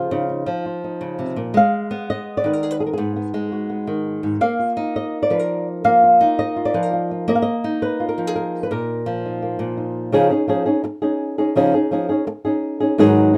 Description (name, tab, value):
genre	flamenco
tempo	168 BPM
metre	4/4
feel	straight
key	unclear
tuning	A4 = 441 Hz
part	flamenco guitar	solo	0.0-13.4 s	Ab2 to F5	-20 LUFS	equal	none
room	moderate studio reverb, RT60 0.6 s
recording	rough home demo mix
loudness	-20 LUFS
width	mono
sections	0.0-10.1 A section; 10.1-13.4 B section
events	none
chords	0.0 Dbadd9; 1.6 Abm7; 4.4 Bbsus4; 10.1 Dbadd9